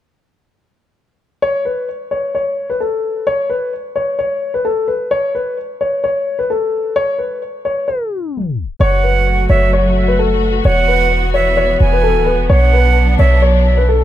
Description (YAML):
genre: hip hop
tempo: 130 BPM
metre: 4/4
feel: half-time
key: F# minor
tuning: A4 = 440 Hz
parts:
  - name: dark concert grand piano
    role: melody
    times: 1.4-14.0 s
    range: A4 to C#5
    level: -16 LUFS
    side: left 2 dB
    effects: low-pass filter
  - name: breathy silver concert flute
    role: second line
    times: 8.8-13.4 s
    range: E5 to G#5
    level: -19 LUFS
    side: right 8 dB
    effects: digital delay
  - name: dark symphonic string section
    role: sustained chords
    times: 8.8-14.0 s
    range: E3 to F#4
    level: -20 LUFS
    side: left 2 dB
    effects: none
  - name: clean 808-style bass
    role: bass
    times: 8.8-14.0 s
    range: D1 to B1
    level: -13 LUFS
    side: right 1 dB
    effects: none
room: light reverb, studio ambience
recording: tape stop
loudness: -13 LUFS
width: side -12 dB against mid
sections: 1.4-8.8 A section; 8.8-14.0 B section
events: tape stop 7.9-8.8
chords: 1.4 N.C.; 8.8 F#m; 10.7 Esus2; 12.5 Bm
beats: | 1.42 1.88 2.34 2.80 | 3.27 3.73 4.19 4.65 | 5.11 5.57 6.04 6.50 | 6.96 7.42 7.88 8.34 | 8.80 9.27 9.73 10.19 | 10.65 11.11 11.57 12.04 | 12.50 12.96 13.42 13.88